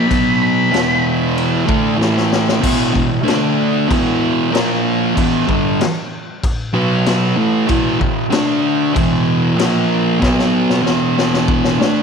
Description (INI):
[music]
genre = garage rock duo or trio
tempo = 95 BPM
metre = 4/4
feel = straight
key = unclear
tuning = A4 = 440 Hz
[part]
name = octave-fuzz lead guitar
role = melody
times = 0.0-1.0 s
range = B5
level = -20 LUFS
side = left 1 dB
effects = distortion, tape echo
[part]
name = thick fuzz guitar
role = riff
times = 0.0-12.0 s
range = E2 to D4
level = -14 LUFS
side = right 1 dB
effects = distortion
[part]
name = raw garage drum kit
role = drums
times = 0.1-12.0 s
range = crash cymbal, kick drum, snare drum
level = -20 LUFS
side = left 2 dB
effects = none
[sound]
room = moderate echo chamber reverb, RT60 2.3 s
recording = 1960s-style stereo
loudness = -13 LUFS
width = side -6 dB against mid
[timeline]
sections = 0.0-2.6 A section; 2.6-12.0 B section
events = lead electric guitar solo 0.0-2.6; drum fill 2.0-2.6, 10.2-12.0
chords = 0.1 B5; 0.7 E5; 2.0 A5; 2.6 E5; 3.3 D5; 3.9 E5; 4.5 A#5; 5.2 Em; 6.7 B5; 7.4 E5; 8.3 D5; 9.0 E5; 9.6 A#5; 10.2 B5; 10.9 E5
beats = | 0.10 0.73 1.36 2.00 | 2.63 3.26 3.89 4.53 | 5.16 5.79 6.42 7.06 | 7.69 8.32 8.95 9.59 | 10.22 10.85 11.48